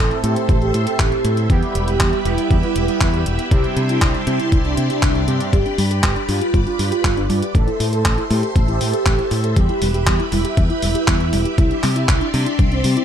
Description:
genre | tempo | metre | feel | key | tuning
italo disco | 119 BPM | 4/4 | straight | A minor | A4 = 440 Hz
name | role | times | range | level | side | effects
mellow synth brass | melody | 0.0-13.0 s | C4 to A4 | -23 LUFS | right 2 dB | chorus, tape echo
phased string machine | sustained chords | 0.0-13.0 s | G4 to C6 | -26 LUFS | equal | ensemble chorus, phaser
analog synth brass | stabs | 0.0-5.5 s | G2 to A4 | -25 LUFS | right 4 dB | chorus
modern bright fingered electric bass | bass | 0.0-13.0 s | E1 to C3 | -20 LUFS | equal | none
gated 80s digital drum machine | drums | 0.1-13.0 s | handclaps, hi-hat | -24 LUFS | equal | gated reverb, overdrive
electronic kick drum | drums | 0.5-12.7 s | none | -18 LUFS | equal | overdrive
soft round pluck | arpeggios | 5.5-13.0 s | G3 to A4 | -26 LUFS | left 3 dB | chorus, tape echo
room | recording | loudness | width
digital ambience | dark, warm production | -15 LUFS | side -9 dB against mid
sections
0.0-13.0 A section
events
none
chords
0.0 Am; 1.5 Em; 3.5 Cadd9; 5.5 G; 7.5 Am; 9.6 Em; 11.6 Cadd9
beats
0.49 0.99 | 1.50 2.00 2.51 3.01 | 3.51 4.02 4.52 5.03 | 5.53 6.04 6.54 7.04 | 7.55 8.05 8.56 9.06 | 9.56 10.07 10.57 11.08 | 11.58 12.09 12.59

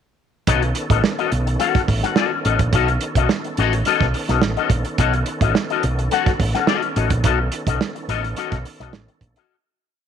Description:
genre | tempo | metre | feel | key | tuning
funk | 106 BPM | 4/4 | straight | B mixolydian | A4 = 440 Hz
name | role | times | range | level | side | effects
electric guitar with an envelope filter | accompaniment | 0.5-9.6 s | C#4 to F#5 | -21 LUFS | left 11 dB | ensemble chorus
tonewheel organ | sustained chords | 0.5-9.5 s | D#3 to A4 | -29 LUFS | right 1 dB | chorus vibrato, fast rotary speaker
picked electric bass with an envelope filter | bass | 0.5-9.3 s | A1 to B1 | -21 LUFS | right 1 dB | none
warm soul drum kit | drums | 0.5-9.5 s | hi-hat, kick drum, snare drum | -21 LUFS | right 4 dB | none
room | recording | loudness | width
light reverb, small room ambience | 1960s-style stereo | -17 LUFS | side -8 dB against mid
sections
0.5-9.5 groove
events
fade-out 7.2-9.5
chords
0.5 B9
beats
| 0.47 1.04 1.60 2.16 | 2.73 3.29 3.85 4.42 | 4.98 5.55 6.11 6.68 | 7.24 7.80 8.37 8.93

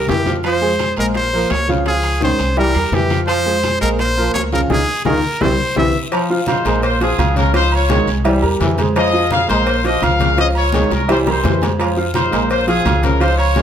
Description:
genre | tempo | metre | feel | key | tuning
latin, salsa | 169 BPM | 4/4 | straight | F minor | A4 = 440 Hz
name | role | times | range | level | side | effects
brilliant trumpet | melody | 0.0-6.0 s | G4 to E5 | -19 LUFS | equal | plate reverb
warm upright piano | accompaniment | 0.0-13.6 s | E3 to F5 | -20 LUFS | right 2 dB | none
upright bass | bass | 0.0-13.6 s | Bb1 to F2 | -20 LUFS | equal | none
clear trombone section | second line | 0.1-13.6 s | Db3 to Ab3 | -22 LUFS | equal | none
bongos and cowbell | percussion | 0.1-13.6 s | none | -26 LUFS | left 5 dB | none
congas | percussion | 0.1-13.6 s | none | -25 LUFS | left 3 dB | none
guiro | percussion | 0.1-13.6 s | none | -33 LUFS | left 5 dB | none
timbales and agogo bells | percussion | 0.1-13.6 s | none | -26 LUFS | right 6 dB | none
clear trumpet section | melody | 6.5-13.6 s | C4 to F5 | -19 LUFS | left 2 dB | plate reverb
room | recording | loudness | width
moderate studio reverb, RT60 0.8 s | none | -13 LUFS | side -9 dB against mid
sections
0.0-6.1 A section; 6.1-13.6 B section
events
drum fill 0.0-0.4, 5.6-6.1, 10.9-11.8; band accent 4.7-6.1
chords
0.4 Fm; 1.1 Bbmadd9; 1.9 Dbadd9; 2.6 C7; 3.3 Fm; 4.0 Bbmadd9; 4.7 Dbadd9; 5.4 C; 6.1 Fm7; 6.8 Bbmadd9; 7.5 Dbadd9; 8.3 C7; 9.0 Fm7; 9.7 Bbmadd9; 10.4 Dbadd9; 11.1 C7; 11.8 Fm7; 12.5 Bbmadd9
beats
0.08 | 0.44 0.79 1.15 1.50 | 1.86 2.21 2.57 2.93 | 3.28 3.64 3.99 4.35 | 4.70 5.06 5.41 5.77 | 6.12 6.48 6.83 7.19 | 7.54 7.90 8.25 8.61 | 8.96 9.31 9.67 10.02 | 10.38 10.73 11.09 11.44 | 11.79 12.15 12.50 12.86 | 13.21 13.57

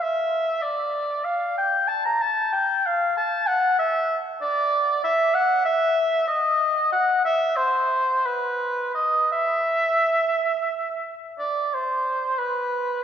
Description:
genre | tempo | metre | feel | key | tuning
classical, baroque-style fantasia for unaccompanied oboe | 56-65 BPM (dotted quarters) | 6/8 | rubato | unclear | A4 = 439 Hz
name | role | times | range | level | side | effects
warm oboe | solo | 0.0-13.0 s | B4 to Bb5 | -20 LUFS | equal | none
room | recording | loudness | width
wet church reverb, RT60 3.1 s | recorded in a church or concert hall | -20 LUFS | side -8 dB against mid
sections
0.0-11.4 A section; 11.4-13.0 A section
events
none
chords
none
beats
0.62 | 1.58 2.53 | 3.46 4.41 | 5.36 6.29 | 7.25 8.25 | 9.29 10.34 | 11.40 12.39

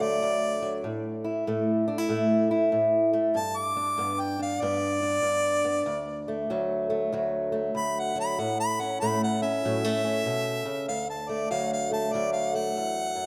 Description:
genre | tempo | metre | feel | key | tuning
acoustic country blues, solo or duo | 96 BPM | 4/4 | swing 64% on 8ths | D major | A4 = 440 Hz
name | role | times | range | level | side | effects
clear harmonica | melody | 0.0-13.3 s | D5 to D6 | -30 LUFS | equal | none
fingerpicked old ladder-braced acoustic guitar | accompaniment | 0.0-13.3 s | D2 to E4 | -29 LUFS | equal | none
room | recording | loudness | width
moderate lush hall reverb, RT60 2.5 s | rough home demo mix | -27 LUFS | mono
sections
0.0-10.9 A section; 10.9-13.3 A section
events
harmonica solo 0.0-10.9, 10.9-13.3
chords
0.0 D; 0.8 A5; 3.4 G; 5.9 D; 8.4 A; 10.9 D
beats
0.22 | 0.85 1.48 2.10 2.73 | 3.36 3.99 4.62 5.25 | 5.87 6.50 7.12 7.75 | 8.38 9.00 9.63 10.25 | 10.88 11.51 12.13 12.76

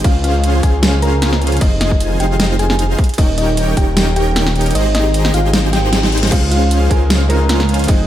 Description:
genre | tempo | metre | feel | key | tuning
future bass | 153 BPM | 4/4 | swing 54% on 16ths, half-time | unclear | A4 = 442 Hz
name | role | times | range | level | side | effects
thumb-piano-like synth pluck | melody | 0.0-8.0 s | Eb4 to Bb5 | -21 LUFS | equal | chorus, sidechain pumping, dub echo
dense compressed supersaw | riff | 0.0-8.1 s | Db4 to Bb5 | -20 LUFS | right 1 dB | sidechain pumping
wide detuned saw bass | bass | 0.0-8.1 s | Eb1 to Db2 | -15 LUFS | equal | chorus, sidechain pumping
dubstep drum kit | drums | 0.0-8.0 s | crash cymbal, hi-hat, snare drum | -19 LUFS | equal | small room ambience
electronic kick drum | drums | 0.0-3.9, 6.3-8.0 s | none | -14 LUFS | equal | small room ambience
reverse cymbal | sound effects | 5.7-6.3 s | none | -25 LUFS | left 6 dB | none
felt-muted upright piano | accompaniment | 6.3-8.1 s | Ab3 to C5 | -22 LUFS | right 2 dB | sidechain pumping
room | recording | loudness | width
little or no reverb | none | -12 LUFS | side -12 dB against mid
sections
0.0-8.1 A section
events
kick drops out 4.8-6.3; reverse cymbal 5.7-6.3; drum fill 5.7-6.3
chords
0.0 Dbmaj7; 1.6 Fm7; 3.0 Eb7; 4.8 Abmaj7; 6.3 Dbmaj7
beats
| 0.04 0.44 0.83 1.22 | 1.61 2.00 2.40 2.79 | 3.18 3.57 3.96 4.36 | 4.75 5.14 5.53 5.93 | 6.32 6.71 7.10 7.50 | 7.89

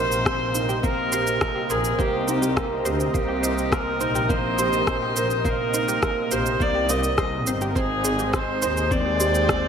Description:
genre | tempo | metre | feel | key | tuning
piano and strings electronica | 104 BPM | 4/4 | straight | C minor | A4 = 440 Hz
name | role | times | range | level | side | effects
rich viola | melody | 0.0-9.7 s | G4 to Eb5 | -25 LUFS | equal | tape echo
lush unison pad | sustained chords | 0.0-9.7 s | C3 to G5 | -30 LUFS | left 1 dB | chorus, sidechain pumping
analog pluck | arpeggios | 0.0-9.6 s | G4 to C5 | -33 LUFS | right 2 dB | none
felt-muted upright piano | riff | 0.0-9.7 s | Bb3 to C5 | -27 LUFS | right 2 dB | analog chorus, tape echo
rich studio double bass section | bass | 0.0-9.7 s | G1 to Eb2 | -28 LUFS | equal | sidechain pumping
electronic shaker and rim click | drums | 0.1-9.6 s | none | -28 LUFS | equal | none
electronic kick drum | drums | 0.3-9.6 s | none | -27 LUFS | equal | overdrive
room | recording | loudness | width
wet lush hall reverb, RT60 1.6 s | dreamy mix soaked in reverb | -20 LUFS | side -7 dB against mid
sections
0.0-9.7 A section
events
none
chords
0.0 Cm7; 7.8 Abmaj7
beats
0.26 | 0.84 1.41 1.99 2.57 | 3.14 3.72 4.30 4.87 | 5.45 6.03 6.61 7.18 | 7.76 8.34 8.91 9.49

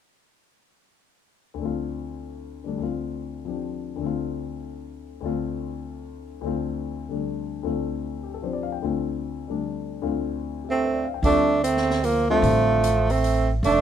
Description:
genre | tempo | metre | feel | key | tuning
modal jazz | 150 BPM | 3/4 | swing 64% on 8ths | D minor | A4 = 440 Hz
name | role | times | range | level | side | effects
warm baby grand piano | accompaniment | 1.5-12.8 s | D2 to G5 | -28 LUFS | left 6 dB | none
breathy tenor saxophone | melody | 10.7-13.8 s | A3 to D4 | -21 LUFS | right 2 dB | none
bright trombone | second line | 10.7-13.8 s | F3 to A3 | -26 LUFS | right 7 dB | none
upright bass | bass | 11.2-13.8 s | F1 to D2 | -24 LUFS | equal | none
open jazz drum kit | drums | 11.2-13.8 s | hi-hat, snare drum | -36 LUFS | left 2 dB | none
room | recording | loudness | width
light reverb | minimal, uncompressed stereo recording | -23 LUFS | side -9 dB against mid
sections
1.6-11.2 A section; 11.2-13.8 B section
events
none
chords
1.6 Dm7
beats
| 1.58 1.99 2.39 | 2.80 3.20 3.61 | 4.01 4.41 4.82 | 5.22 5.62 6.02 | 6.42 6.83 7.23 | 7.63 8.03 8.43 | 8.83 9.23 9.64 | 10.04 10.44 10.84 | 11.24 11.64 12.04 | 12.44 12.84 13.24 | 13.64

